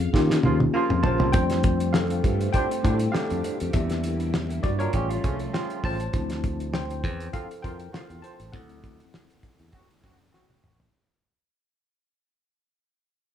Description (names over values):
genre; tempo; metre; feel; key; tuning
lush 1970s-style soul; 100 BPM; 4/4; swing 54% on 16ths; unclear; A4 = 440 Hz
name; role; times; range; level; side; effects
tine electric piano; accompaniment; 0.0-11.0 s; F3 to A5; -28 LUFS; left 2 dB; overdrive, fast stereo tremolo
modern bright fingered electric bass; bass; 0.0-10.9 s; A1 to Eb3; -27 LUFS; equal; none
cloth-damped thuddy drum kit; drums; 0.1-10.9 s; hi-hat, kick drum, snare drum, toms; -26 LUFS; equal; none
mellow horn section; stabs; 0.4-10.8 s; G2 to F#4; -29 LUFS; right 5 dB; none
soft string machine; sustained chords; 1.3-6.1 s; D3 to G4; -35 LUFS; equal; ensemble chorus
electric guitar through a small old amp; riff; 4.8-6.0 s; A3 to Bb4; -35 LUFS; right 6 dB; none
room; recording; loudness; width
little or no reverb; none; -22 LUFS; side -9 dB against mid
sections
0.0-1.3 A section; 1.3-10.9 B section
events
band accent 0.0-1.3; drum fill 0.1-1.3, 10.3-10.9; fade-out 1.3-10.9; tine electric piano solo 1.3-10.9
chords
0.1 Eb9; 1.3 F69; 3.7 Em7b5; 4.9 A7alt; 6.1 Dm7; 8.5 D7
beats
0.14 0.74 | 1.34 1.94 2.54 3.14 | 3.74 4.34 4.94 5.54 | 6.14 6.74 7.34 7.94 | 8.54 9.14 9.74 10.34